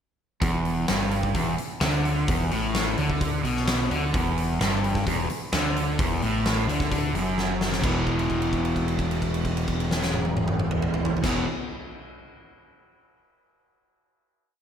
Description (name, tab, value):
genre	classic rock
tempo	130 BPM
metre	4/4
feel	straight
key	E minor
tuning	A4 = 440 Hz
part	crunchy overdriven guitar	riff	0.4-11.5 s	E2 to E3	-29 LUFS	right 9 dB	slapback echo
part	overdriven semi-hollow guitar	riff	0.4-11.5 s	E2 to E3	-27 LUFS	left 4 dB	none
part	deep dub picked electric bass	bass	0.4-11.4 s	E1 to D2	-31 LUFS	equal	none
part	huge arena drum kit	drums	0.4-11.3 s	crash cymbal, hi-hat, kick drum, snare drum, toms	-28 LUFS	equal	none
room	moderate lush hall reverb, RT60 1.7 s, small room ambience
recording	big arena sound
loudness	-22 LUFS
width	side -8 dB against mid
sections	0.4-7.8 riff; 7.8-11.5 final chord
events	drum fill 7.4-7.8; held note 7.8-11.2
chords	0.4 Em; 7.8 E5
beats	| 0.41 0.88 1.35 1.81 | 2.28 2.74 3.21 3.67 | 4.14 4.60 5.07 5.53 | 5.99 6.45 6.92 7.38 | 7.84 8.30 8.76 9.21 | 9.67 10.13 10.59 11.05